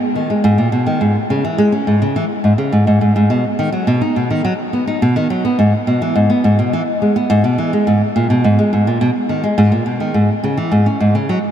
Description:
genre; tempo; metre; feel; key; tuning
folktronica; 105 BPM; 4/4; straight; unclear; A4 = 440 Hz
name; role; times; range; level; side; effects
flamenco guitar; solo; 0.2-11.4 s; G#2 to D#4; -13 LUFS; equal; tape echo
room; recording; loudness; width
moderate huge ambient reverb, RT60 8.9 s; dreamy mix soaked in reverb; -13 LUFS; side -10 dB against mid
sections
0.0-11.5 A section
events
none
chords
none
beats
0.44 | 1.01 1.58 2.16 2.73 | 3.30 3.87 4.44 5.01 | 5.58 6.16 6.73 7.30 | 7.87 8.44 9.01 9.58 | 10.16 10.73 11.30

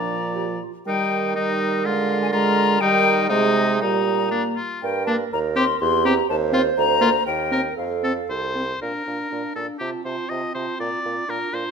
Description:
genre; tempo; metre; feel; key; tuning
quick classical-period movement for wind quintet; 114-127 BPM; 2/4; rubato; Eb major, Bb major from 4.8 s; A4 = 439 Hz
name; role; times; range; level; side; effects
hollow concert flute; melody; 0.0-11.7 s; Eb5 to C6; -24 LUFS; left 10 dB; none
bright oboe; second line; 0.0-11.7 s; D4 to Eb5; -26 LUFS; left 3 dB; none
dark clarinet; accompaniment; 0.0-11.7 s; C4 to C5; -27 LUFS; right 10 dB; none
warm French horn; accompaniment; 0.0-11.7 s; F3 to F4; -26 LUFS; right 2 dB; none
warm bassoon; bass; 0.0-11.6 s; C2 to Eb3; -26 LUFS; right 3 dB; none
room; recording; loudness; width
moderate recital hall reverb, RT60 1.5 s; close, detailed microphones; -19 LUFS; side -6 dB against mid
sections
0.9-8.8 A section; 8.8-11.7 B section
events
none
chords
0.0 Bb; 0.9 Eb; 1.9 Bb7/D; 2.8 Eb; 3.3 Ab/C; 3.8 Eb/Bb; 4.8 Gm; 5.3 Cm7/Eb; 5.8 C7/E; 6.3 F7(no3)/Eb; 6.8 Bb/D; 7.3 Cm7/Eb; 7.8 F; 8.8 Bb; 9.8 F/C; 10.8 Bb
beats
0.35 | 0.87 1.36 | 1.85 2.33 | 2.81 3.29 | 3.81 4.32 | 4.83 5.32 | 5.81 6.29 | 6.78 7.27 | 7.78 8.30 | 8.82 9.32 | 9.80 10.29 | 10.79 11.28

